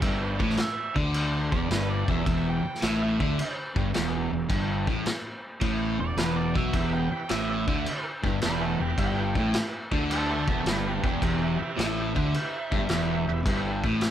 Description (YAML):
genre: blues rock power trio and southern rock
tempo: 107 BPM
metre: 4/4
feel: swing 68% on 8ths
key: E minor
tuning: A4 = 440 Hz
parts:
  - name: biting lead guitar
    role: second line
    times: 0.0-13.4 s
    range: G4 to B5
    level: -34 LUFS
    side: right 4 dB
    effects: overdrive
  - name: crunchy overdriven guitar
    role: riff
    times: 0.0-14.0 s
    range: E2 to D3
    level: -27 LUFS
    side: equal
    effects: none
  - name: fuzz fingered electric bass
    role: bass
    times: 0.0-14.0 s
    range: E1 to D2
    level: -32 LUFS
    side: equal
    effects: overdrive
  - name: vintage drum kit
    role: drums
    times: 0.0-14.1 s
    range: crash cymbal, kick drum, snare drum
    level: -30 LUFS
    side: equal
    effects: none
  - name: overdriven tonewheel organ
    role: sustained chords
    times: 6.7-14.1 s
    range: E4 to D5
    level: -37 LUFS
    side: right 2 dB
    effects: slow rotary speaker, chorus vibrato
room: moderate club reverb, RT60 0.8 s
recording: none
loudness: -24 LUFS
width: side -10 dB against mid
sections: 0.0-14.1 A section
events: lead electric guitar solo 0.0-14.1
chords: 0.0 Em